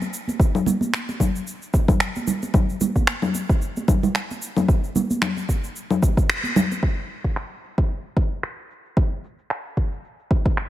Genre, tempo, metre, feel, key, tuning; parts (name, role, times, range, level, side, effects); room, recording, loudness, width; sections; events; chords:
downtempo; 112 BPM; 4/4; swing 55% on 16ths
afro-pop drum kit; drums; 0.0-10.7 s; cabasa, congas, crash cymbal, finger snaps; -24 LUFS; left 3 dB; low-pass filter on perc, low-pass filter on snare, low-pass filter on cymbals
congas; percussion; 0.0-6.8 s; -25 LUFS; right 4 dB
electronic kick drum; drums; 0.4-10.6 s; -19 LUFS; equal; overdrive
little or no reverb; -20 LUFS; side -14 dB against mid
0.0-6.8 A section; 6.8-10.7 B section
band accent 6.3